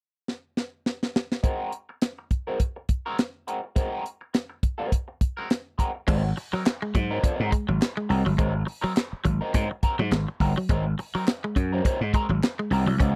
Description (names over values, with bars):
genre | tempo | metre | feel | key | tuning
funk | 104 BPM | 4/4 | swing 56% on 16ths | Ab mixolydian | A4 = 442 Hz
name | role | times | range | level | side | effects
tight funk drum kit | drums | 0.3-13.2 s | crash cymbal, handclaps, hi-hat, kick drum, snare drum | -26 LUFS | equal | none
electric guitar at the edge of break-up | accompaniment | 1.4-13.2 s | F3 to Bb4 | -33 LUFS | equal | wah
semi-hollow electric guitar | riff | 6.1-13.1 s | Gb3 to Db4 | -32 LUFS | equal | none
gritty slap bass | bass | 6.1-13.2 s | G1 to Ab2 | -27 LUFS | equal | overdrive
room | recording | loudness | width
little or no reverb | dry, close 1970s-style studio recording | -26 LUFS | mono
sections
0.0-1.4 A section; 1.4-6.1 B section; 6.1-13.2 C section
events
drum fill 0.3-1.4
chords
0.0 N.C.; 1.4 Ab9